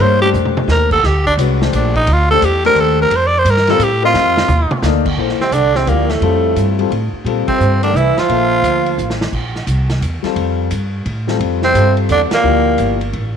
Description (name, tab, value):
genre	modal jazz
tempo	174 BPM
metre	3/4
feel	swing 64% on 8ths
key	Bb lydian from 5.2 s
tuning	A4 = 440 Hz
part	growling tenor saxophone	melody	0.0-9.2, 11.6-13.1 s	A3 to D5	-15 LUFS	right 1 dB	none
part	warm grand piano	accompaniment	0.0-13.0 s	F3 to E5	-19 LUFS	left 12 dB	none
part	upright bass	bass	0.0-13.4 s	G1 to Bb2	-17 LUFS	right 1 dB	none
part	vintage drum kit	drums	0.3-13.2 s	crash cymbal, hi-hat, kick drum, ride cymbal, snare drum, toms	-24 LUFS	right 1 dB	none
part	warm trombone	second line	5.4-9.2, 11.6-13.1 s	A2 to F3	-20 LUFS	right 11 dB	none
room	light reverb, small room reverb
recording	1960s-style stereo with parts hard left and right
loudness	-12 LUFS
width	side -7 dB against mid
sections	0.0-5.2 A section; 5.2-13.4 B section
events	tenor saxophone solo 0.0-5.2; drum fill 0.3-0.7, 4.1-4.8, 9.0-9.3; band accent 7.4, 12.3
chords	0.0 Ebmaj9; 1.0 Bb; 5.2 Bbmaj13